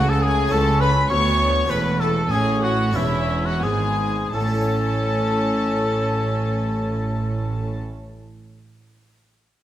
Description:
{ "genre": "classical, baroque-style concerto movement with solo episodes", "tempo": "84-106 BPM", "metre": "4/4", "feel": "straight", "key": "A major", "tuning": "A4 = 440 Hz", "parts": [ { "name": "warm chamber violin section", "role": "melody", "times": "0.0-7.8 s", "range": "E5 to C#6", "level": "-28 LUFS", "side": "left 4 dB", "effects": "none" }, { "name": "warm oboe", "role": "melody", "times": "0.0-7.8 s", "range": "E4 to C#5", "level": "-26 LUFS", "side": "left 1 dB", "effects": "none" }, { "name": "warm studio violin section", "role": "second line", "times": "0.0-7.8 s", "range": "E4 to C#5", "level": "-27 LUFS", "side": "left 2 dB", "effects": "none" }, { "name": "harpsichord", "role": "accompaniment", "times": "0.0-8.1 s", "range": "C#2 to C#5", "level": "-31 LUFS", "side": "equal", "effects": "none" }, { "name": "warm chamber viola section", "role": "accompaniment", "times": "0.0-7.8 s", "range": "A3 to C#4", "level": "-28 LUFS", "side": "right 1 dB", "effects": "none" }, { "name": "rich chamber double bass section", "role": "bass", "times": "0.0-7.8 s", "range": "E1 to D2", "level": "-26 LUFS", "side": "right 2 dB", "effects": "none" }, { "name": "warm chamber cello section", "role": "bass", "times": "0.0-7.8 s", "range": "C#2 to C#3", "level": "-24 LUFS", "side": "right 1 dB", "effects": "none" } ], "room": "moderate recital hall reverb, RT60 1.6 s", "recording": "none", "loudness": "-18 LUFS", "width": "side -12 dB against mid", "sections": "0.0-4.3 A section; 4.3-7.2 B section", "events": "slowing down 0.0-4.3", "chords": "0.0 A; 0.5 A/C#; 1.7 A/E; 3.0 E7; 4.3 A" }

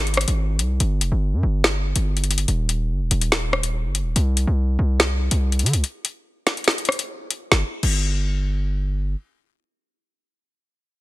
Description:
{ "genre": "hip hop, drill", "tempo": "143 BPM", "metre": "4/4", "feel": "half-time", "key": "unclear", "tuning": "A4 = 440 Hz", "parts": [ { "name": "hard-hitting 808-style bass", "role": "bass", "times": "0.0-9.2 s", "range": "Eb1 to Eb3", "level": "-20 LUFS", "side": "equal", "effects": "none" }, { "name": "drill drum kit", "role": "drums", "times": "0.0-7.9 s", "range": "crash cymbal, hi-hat, rim click, snare drum", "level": "-21 LUFS", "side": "left 1 dB", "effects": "none" } ], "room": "digital ambience", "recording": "dense, heavily limited modern master", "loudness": "-19 LUFS", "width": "side -18 dB against mid", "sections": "0.0-7.5 A section; 7.5-10.9 B section", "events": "break 5.8-7.5", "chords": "none" }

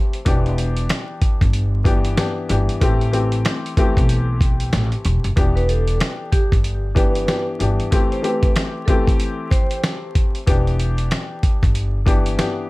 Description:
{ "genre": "hip hop, boom-bap hip-hop", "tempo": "94 BPM", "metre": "4/4", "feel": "swing 59% on 16ths", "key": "E minor", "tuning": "A4 = 440 Hz", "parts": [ { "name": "dark grand piano", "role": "accompaniment", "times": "0.0-12.7 s", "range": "E3 to G4", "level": "-24 LUFS", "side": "left 3 dB", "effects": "high-pass filter, low-pass filter" }, { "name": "dusty soul sampler-style drum kit", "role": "drums", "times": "0.1-12.6 s", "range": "hi-hat, kick drum, snare drum", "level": "-18 LUFS", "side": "equal", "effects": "none" }, { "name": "upright bass", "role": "bass", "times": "0.3-12.4 s", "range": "E1 to B1", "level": "-20 LUFS", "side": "equal", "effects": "none" }, { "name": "vibraphone with medium mallets", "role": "melody", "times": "5.6-9.8 s", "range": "G4 to C5", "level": "-27 LUFS", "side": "right 2 dB", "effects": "high-pass filter, low-pass filter, plate reverb, analog delay" } ], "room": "little or no reverb", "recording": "vinyl crackle", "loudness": "-16 LUFS", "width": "side -21 dB against mid", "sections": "0.0-5.4 A section; 5.4-12.7 A section", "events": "none", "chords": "0.3 Em7; 2.8 Am7; 5.4 Em7; 7.9 Am7; 10.5 Em7" }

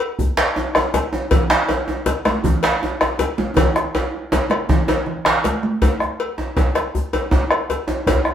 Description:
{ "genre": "west african traditional, West African drum ensemble", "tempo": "106 BPM (dotted quarters)", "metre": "12/8", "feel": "straight", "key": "none", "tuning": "none", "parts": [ { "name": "cowbell", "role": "percussion", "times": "0.0-8.2 s", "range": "none", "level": "-24 LUFS", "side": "left 4 dB", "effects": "none" }, { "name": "bombo", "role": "percussion", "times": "0.2-8.3 s", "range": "none", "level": "-20 LUFS", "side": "equal", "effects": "none" }, { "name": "djembe", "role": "percussion", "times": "0.2-8.3 s", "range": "none", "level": "-24 LUFS", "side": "left 2 dB", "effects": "none" }, { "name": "djembe", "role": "percussion", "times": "0.4-8.2 s", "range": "none", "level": "-21 LUFS", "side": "right 2 dB", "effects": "none" }, { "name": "congas", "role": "percussion", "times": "1.3-5.8 s", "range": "none", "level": "-24 LUFS", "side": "right 3 dB", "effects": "none" } ], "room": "wet studio reverb, RT60 0.7 s", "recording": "band playing live in one room", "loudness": "-17 LUFS", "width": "side -9 dB against mid", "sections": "0.0-5.8 A section; 5.8-8.3 B section", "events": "drum fill 3.6-5.8", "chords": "none" }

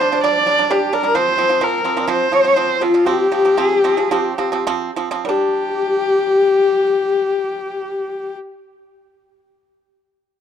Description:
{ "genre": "mongolian traditional, Mongolian folk", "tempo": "98-130 BPM", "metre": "4/4", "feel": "straight", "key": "G yu mode", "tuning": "A4 = 440 Hz", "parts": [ { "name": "bright horsehead fiddle", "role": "melody", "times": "0.0-8.4 s", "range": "F4 to D5", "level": "-18 LUFS", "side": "equal", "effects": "none" }, { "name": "breathy low xiao", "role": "second line", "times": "0.0-8.4 s", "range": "F4 to D5", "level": "-19 LUFS", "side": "left 5 dB", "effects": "none" }, { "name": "pipa", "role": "arpeggios", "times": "0.0-8.4 s", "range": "F3 to D4", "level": "-21 LUFS", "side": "right 7 dB", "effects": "none" } ], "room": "small room ambience", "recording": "dry, close 1970s-style studio recording", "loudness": "-14 LUFS", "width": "side -8 dB against mid", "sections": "0.0-5.3 A section; 5.3-10.2 B section", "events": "slowing down 1.2-5.3", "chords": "0.0 G5; 1.2 F5; 5.3 G5" }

